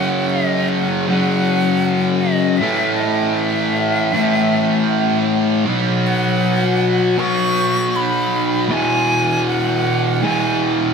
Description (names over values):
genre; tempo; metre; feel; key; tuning
rock; 79 BPM; 4/4; straight; B major; A4 = 442 Hz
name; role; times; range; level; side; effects
bright silver concert flute; melody; 0.0-10.7 s; D#5 to C#6; -22 LUFS; equal; slapback echo
thick fuzz guitar; riff; 0.0-10.9 s; E2 to B3; -16 LUFS; left 1 dB; distortion, wide subtle chorus
room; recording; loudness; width
wet echo chamber reverb, RT60 1.8 s; none; -15 LUFS; side -6 dB against mid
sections
0.0-10.9 A section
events
none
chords
0.0 F#5; 2.6 A5; 5.6 B5; 8.7 Eadd9